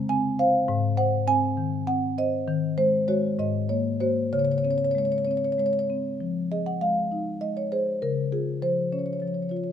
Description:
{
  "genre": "classical, contemporary piece for solo marimba",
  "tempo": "66 BPM (dotted quarters)",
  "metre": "6/8",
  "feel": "rubato",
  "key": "Db major",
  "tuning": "A4 = 439 Hz",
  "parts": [
    { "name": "marimba with soft mallets", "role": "solo", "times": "0.0-9.7 s", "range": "Ab2 to Ab5", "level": "-23 LUFS", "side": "left 1 dB", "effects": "none" }
  ],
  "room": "moderate recital hall reverb, RT60 1.3 s",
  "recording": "close, detailed microphones",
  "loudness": "-23 LUFS",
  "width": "side -8 dB against mid",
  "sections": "0.0-6.2 A section; 6.2-9.7 A section",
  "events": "none",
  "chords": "0.0 Db5; 0.7 Ab; 2.5 Ebmadd11; 3.4 Absus2; 4.3 Db5; 6.2 Fm7; 8.0 Db"
}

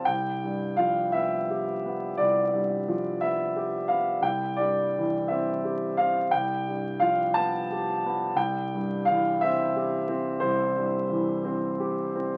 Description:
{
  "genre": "classical, romantic nocturne for solo piano",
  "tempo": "58 BPM (dotted quarters)",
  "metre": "12/8",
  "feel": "rubato",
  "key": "C major",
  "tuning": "A4 = 441 Hz",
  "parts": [
    { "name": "warm concert grand piano", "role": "solo", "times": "0.0-12.4 s", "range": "C2 to A5", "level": "-27 LUFS", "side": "equal", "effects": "none" }
  ],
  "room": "light reverb",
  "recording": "very old 78 rpm record, vinyl crackle",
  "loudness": "-27 LUFS",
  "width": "mono",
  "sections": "0.0-12.4 A section",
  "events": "none",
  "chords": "0.1 G7/C; 4.2 C; 6.3 G7/C; 8.4 C"
}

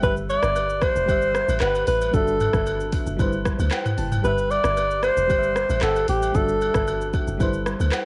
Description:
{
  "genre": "afrobeats",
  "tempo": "114 BPM",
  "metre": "4/4",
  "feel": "straight",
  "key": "G major",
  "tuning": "A4 = 440 Hz",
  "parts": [
    { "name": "breathy alto saxophone", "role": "melody", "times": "0.0-7.1 s", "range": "G4 to D5", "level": "-24 LUFS", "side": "equal", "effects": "tape echo" },
    { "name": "FM electric piano with tremolo", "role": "accompaniment", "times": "0.0-8.1 s", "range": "G3 to A5", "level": "-32 LUFS", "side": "equal", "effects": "cassette tape" },
    { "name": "deep log drum bass", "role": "bass", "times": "0.0-7.9 s", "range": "E1 to D2", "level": "-29 LUFS", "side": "equal", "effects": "none" },
    { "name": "afro-pop drum kit", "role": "drums", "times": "0.0-8.1 s", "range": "handclaps, hi-hat, kick drum, rim click, shaker, toms", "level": "-29 LUFS", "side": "equal", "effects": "cassette tape" },
    { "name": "agogo bells and woodblock", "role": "percussion", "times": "0.3-8.1 s", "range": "none", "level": "-36 LUFS", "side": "equal", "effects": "none" }
  ],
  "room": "light reverb",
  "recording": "home recording on cassette, nothing above 11.0 kHz",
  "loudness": "-22 LUFS",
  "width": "mono",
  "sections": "0.0-8.1 A section",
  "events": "kick muted 4.2-5.3",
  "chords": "0.0 G6; 1.1 C/G; 2.1 Dadd9/G; 3.2 Am13; 4.2 G6; 5.3 C/G; 6.3 Dadd9/G; 7.4 Cmaj9"
}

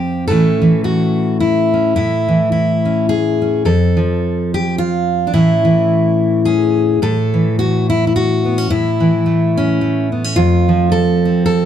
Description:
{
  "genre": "folk, solo fingerstyle acoustic guitar",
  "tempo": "107 BPM",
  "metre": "3/4",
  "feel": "swing 56% on 8ths",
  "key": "A major",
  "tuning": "A4 = 440 Hz",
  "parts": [
    { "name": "fingerpicked steel-string acoustic guitar", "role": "solo", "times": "0.0-11.7 s", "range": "F2 to A4", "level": "-12 LUFS", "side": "equal", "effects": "none" }
  ],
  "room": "light reverb",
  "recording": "dark, warm production",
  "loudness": "-12 LUFS",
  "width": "side -9 dB against mid",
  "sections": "0.0-7.0 A section; 7.0-11.7 A section",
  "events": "none",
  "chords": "0.3 A; 3.7 N.C.; 5.3 A; 10.4 F"
}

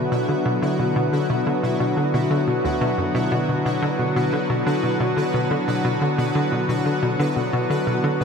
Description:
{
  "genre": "ambient, sequencer-driven space music",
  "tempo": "89 BPM",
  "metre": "4/4",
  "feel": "straight",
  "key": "B minor",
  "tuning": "A4 = 440 Hz",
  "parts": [
    { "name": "lush unison pad", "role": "sustained chords", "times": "0.0-8.2 s", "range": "D3 to F#4", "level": "-21 LUFS", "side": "equal", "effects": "chorus, shimmer reverb" },
    { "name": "hollow square pluck", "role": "riff", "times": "0.0-8.2 s", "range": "D2 to D3", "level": "-24 LUFS", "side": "left 1 dB", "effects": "chorus, ping-pong delay" },
    { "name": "pulsing gated texture", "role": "texture", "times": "0.0-8.2 s", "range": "E4 to E5", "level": "-31 LUFS", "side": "equal", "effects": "chorus, built-in reverb, shimmer reverb" }
  ],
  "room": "wet plate reverb, RT60 2.5 s",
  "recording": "dreamy mix soaked in reverb",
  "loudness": "-19 LUFS",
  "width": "side -6 dB against mid",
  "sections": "0.0-8.2 A section",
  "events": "none",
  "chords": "0.0 Bm"
}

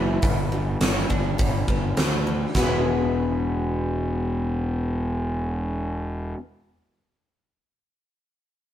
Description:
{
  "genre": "quiet-loud alternative rock",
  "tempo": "104 BPM",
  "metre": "4/4",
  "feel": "straight",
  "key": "E mixolydian",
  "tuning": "A4 = 440 Hz",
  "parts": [
    { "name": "picked acoustic archtop guitar", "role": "arpeggios", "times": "0.0-6.4 s", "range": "E2 to G#4", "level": "-29 LUFS", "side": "left 2 dB", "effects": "none" },
    { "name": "fuzz picked electric bass", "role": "bass", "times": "0.0-6.3 s", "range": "E1 to D2", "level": "-25 LUFS", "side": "equal", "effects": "overdrive" },
    { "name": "huge arena drum kit", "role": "drums", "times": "0.2-2.7 s", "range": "hi-hat, kick drum, snare drum", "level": "-24 LUFS", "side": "equal", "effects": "none" }
  ],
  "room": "light reverb",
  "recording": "band playing live in one room",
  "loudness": "-22 LUFS",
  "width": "side -11 dB against mid",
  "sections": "0.0-2.5 A section; 2.5-4.9 B section",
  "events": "none",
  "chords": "0.2 G; 2.5 E"
}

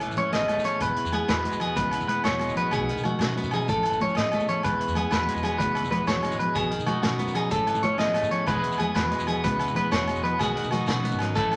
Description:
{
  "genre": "highlife guitar band",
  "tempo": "125 BPM (dotted quarters)",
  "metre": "12/8",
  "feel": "straight",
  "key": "E major",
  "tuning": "A4 = 440 Hz",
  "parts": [
    { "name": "electric guitar at the edge of break-up", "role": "accompaniment", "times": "0.0-11.6 s", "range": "E2 to G#4", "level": "-34 LUFS", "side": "equal", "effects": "harmonic tremolo" },
    { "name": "upright bass", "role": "bass", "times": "0.0-11.6 s", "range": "E1 to B2", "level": "-36 LUFS", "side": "equal", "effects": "none" },
    { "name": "vintage drum kit", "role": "drums", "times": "0.0-11.6 s", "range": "hi-hat, kick drum, snare drum", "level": "-34 LUFS", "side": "equal", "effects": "none" },
    { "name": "agogo bells", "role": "percussion", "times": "0.0-11.6 s", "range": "none", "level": "-37 LUFS", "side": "equal", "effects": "none" },
    { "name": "congas", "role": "percussion", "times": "0.0-11.5 s", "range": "none", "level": "-34 LUFS", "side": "equal", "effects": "none" },
    { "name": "shekere", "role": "percussion", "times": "0.0-11.4 s", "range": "none", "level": "-44 LUFS", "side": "equal", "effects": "none" },
    { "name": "clean electric guitar", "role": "arpeggios", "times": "0.2-11.6 s", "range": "F#4 to D#5", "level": "-29 LUFS", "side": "equal", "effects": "none" }
  ],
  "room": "moderate club reverb, RT60 0.9 s",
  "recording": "none",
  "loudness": "-25 LUFS",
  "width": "mono",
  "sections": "0.0-11.6 A section",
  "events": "none",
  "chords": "0.0 A; 0.8 E; 2.7 B; 3.7 A; 4.6 E; 6.6 B; 7.5 A; 8.5 E; 10.4 B"
}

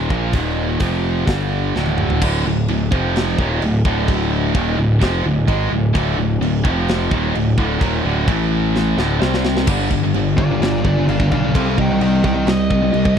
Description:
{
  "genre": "heavy metal",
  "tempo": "129 BPM",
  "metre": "4/4",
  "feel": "straight",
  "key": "D phrygian",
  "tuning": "A4 = 437 Hz",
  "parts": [
    { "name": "high-gain distorted guitar", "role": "riff", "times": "0.0-13.2 s", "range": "D2 to C4", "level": "-18 LUFS", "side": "equal", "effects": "distortion" },
    { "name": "fuzz picked electric bass", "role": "bass", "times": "0.0-13.2 s", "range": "D1 to C2", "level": "-20 LUFS", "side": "equal", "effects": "overdrive" },
    { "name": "tight metal drum kit", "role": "drums", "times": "0.1-13.2 s", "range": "crash cymbal, hi-hat, kick drum, snare drum, toms", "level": "-22 LUFS", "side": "equal", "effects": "none" },
    { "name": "high-gain lead guitar", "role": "melody", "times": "10.4-13.2 s", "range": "F4 to G5", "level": "-22 LUFS", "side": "equal", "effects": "distortion, slapback echo" }
  ],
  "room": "small room ambience",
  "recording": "dry, close 1970s-style studio recording",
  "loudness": "-15 LUFS",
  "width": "side -8 dB against mid",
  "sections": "0.0-2.2 A section; 2.2-9.7 B section; 9.7-13.2 C section",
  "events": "drum fill 1.8-2.2, 8.7-9.7; lead electric guitar solo 9.7-13.2",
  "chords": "0.1 Bb5; 0.3 Eb5; 0.8 F5; 1.3 G5; 1.8 D5; 2.9 F5; 3.4 Dm; 6.7 F5; 7.1 D5; 8.3 A5; 9.0 D5; 9.2 C5; 9.7 G5; 11.5 Cm"
}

